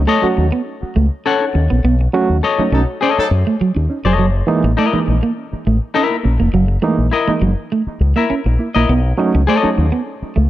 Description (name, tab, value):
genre	funk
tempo	102 BPM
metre	4/4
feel	straight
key	unclear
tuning	A4 = 440 Hz
part	electric guitar at the edge of break-up	riff	0.0-10.5 s	F#3 to C#4	-18 LUFS	right 4 dB	none
part	fingered electric bass with an envelope filter	bass	0.0-10.5 s	E#1 to F#2	-15 LUFS	equal	none
part	semi-hollow electric guitar	accompaniment	0.1-9.7 s	E4 to F#5	-19 LUFS	left 6 dB	spring reverb, plate reverb
part	reed electric piano	stabs	0.2-10.1 s	E3 to F#4	-20 LUFS	right 4 dB	overdrive, fast tremolo, analog delay, plate reverb
part	warm horn section	second line	2.7-3.3 s	F#3 to A4	-22 LUFS	left 1 dB	plate reverb
room	light reverb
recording	none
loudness	-13 LUFS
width	side -14 dB against mid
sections	0.0-10.5 A section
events	band accent 1.8-4.2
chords	0.0 B9; 4.2 F#13; 8.9 B9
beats	0.09 0.67 1.26 | 1.84 2.43 3.02 3.60 | 4.19 4.78 5.37 5.95 | 6.54 7.13 7.72 8.30 | 8.89 9.48 10.06